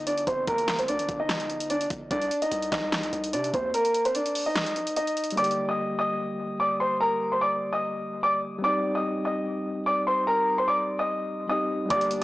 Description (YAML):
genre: hip hop, trap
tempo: 147 BPM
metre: 4/4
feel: half-time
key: G minor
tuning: A4 = 437 Hz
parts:
  - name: dark baby grand piano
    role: melody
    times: 0.0-12.2 s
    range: Bb3 to Eb6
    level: -25 LUFS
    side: equal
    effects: low-pass filter
  - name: long sustained 808-style bass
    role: bass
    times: 0.0-3.7, 11.9-12.2 s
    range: G1 to C3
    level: -39 LUFS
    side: equal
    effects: none
  - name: dubstep drum kit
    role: drums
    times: 0.1-5.6, 11.9-12.2 s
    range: handclaps, hi-hat, kick drum, snare drum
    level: -32 LUFS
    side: equal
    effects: overdrive
  - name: tine electric piano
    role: accompaniment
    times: 5.3-12.2 s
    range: D3 to G4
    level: -32 LUFS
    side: left 1 dB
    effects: medium stereo tremolo, low-pass filter
  - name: soft octave-layered synth lead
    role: second line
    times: 11.9-12.2 s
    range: D5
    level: -28 LUFS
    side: right 2 dB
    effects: chorus, tremolo
room: light reverb, digital ambience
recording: blown-out, overdriven recording, overdrive, small speaker sound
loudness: -24 LUFS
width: side -18 dB against mid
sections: 0.0-5.4 A section; 5.4-12.2 B section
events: kick muted 3.7-5.4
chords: 0.0 Gm; 2.1 Cm; 5.4 Gm; 8.6 G5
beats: 0.07 | 0.47 0.88 1.29 1.70 | 2.11 2.52 2.92 3.33 | 3.74 4.15 4.56 4.96 | 5.37 5.78 6.19 6.60 | 7.00 7.41 7.82 8.23 | 8.64 9.05 9.45 9.86 | 10.27 10.68 11.09 11.49 | 11.90